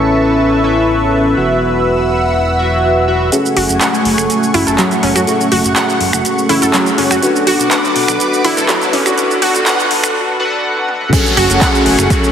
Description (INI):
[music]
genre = progressive house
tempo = 123 BPM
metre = 4/4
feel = straight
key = F# minor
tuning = A4 = 440 Hz
[part]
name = lush unison pad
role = sustained chords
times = 0.0-12.3 s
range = A3 to E6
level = -18 LUFS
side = right 1 dB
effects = chorus, phaser, sidechain pumping
[part]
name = chorused polysynth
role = stabs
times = 0.0-12.3 s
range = C#4 to F#5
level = -15 LUFS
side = left 1 dB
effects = sidechain pumping, tape echo
[part]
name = fat analog bass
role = bass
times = 0.0-12.1 s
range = E1 to F#2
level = -21 LUFS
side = equal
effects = sidechain pumping
[part]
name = swell, riser and downlifter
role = sound effects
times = 2.6-12.3 s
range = none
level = -24 LUFS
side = right 1 dB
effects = none
[part]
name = deep house drum kit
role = drums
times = 3.3-12.3 s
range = crash cymbal, finger snaps, handclaps, hi-hat, shaker, toms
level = -17 LUFS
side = right 1 dB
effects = overdrive, sidechain pumping on hats, small room ambience, sidechain pumping on perc, sidechain pumping on toms, sidechain pumping on cymbals
[part]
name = wide unison pluck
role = arpeggios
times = 3.6-11.7 s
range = F#3 to F#5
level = -16 LUFS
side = right 1 dB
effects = sidechain pumping, tape echo
[part]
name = electronic kick drum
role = drums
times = 11.1-12.2 s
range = none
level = -14 LUFS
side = equal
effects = overdrive, small room ambience
[sound]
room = wet lush hall reverb, RT60 1.9 s, digital ambience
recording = heavily compressed radio sound, high-pass filter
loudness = -10 LUFS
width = side -8 dB against mid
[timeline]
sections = 0.0-3.3 A section; 3.3-11.1 B section; 11.1-12.3 C section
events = filter sweep on analog polysynth 0.0-3.3, 3.3-11.1; swell 2.6-3.3; build-up 3.3-11.1; break 10.2-11.1; drum fill 10.8-11.1; drop 11.1-12.3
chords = 0.0 Aadd9; 1.4 Esus2; 3.3 F#madd9; 7.2 Bm7; 11.1 F#madd9